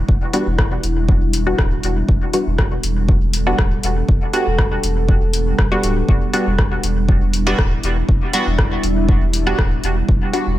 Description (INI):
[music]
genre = dub techno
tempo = 120 BPM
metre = 4/4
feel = straight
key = E minor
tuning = A4 = 439 Hz
[part]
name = deep dark ambient pad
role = sustained chords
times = 0.0-10.6 s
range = G3 to A4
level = -24 LUFS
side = equal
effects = chorus, built-in reverb, sidechain pumping
[part]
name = warm sub bass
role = bass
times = 0.0-10.6 s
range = D1 to E1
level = -20 LUFS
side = equal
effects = sidechain pumping
[part]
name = electronic kick drum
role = drums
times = 0.1-10.2 s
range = none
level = -16 LUFS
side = equal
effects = none
[part]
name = filtered dub chord stab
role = stabs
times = 0.3-10.5 s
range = G3 to F#4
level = -22 LUFS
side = equal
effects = chorus, phaser, sidechain pumping, dub echo
[part]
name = punchy analog drum machine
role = drums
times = 0.3-10.4 s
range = hi-hat, rim click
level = -24 LUFS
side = left 1 dB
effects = dub echo
[sound]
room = digital ambience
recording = none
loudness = -15 LUFS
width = side -14 dB against mid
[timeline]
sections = 0.0-10.6 A section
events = none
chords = 0.0 Em7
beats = | 0.09 0.58 1.08 1.58 | 2.08 2.58 3.08 3.58 | 4.08 4.58 5.08 5.58 | 6.08 6.58 7.08 7.58 | 8.09 8.59 9.09 9.59 | 10.09 10.59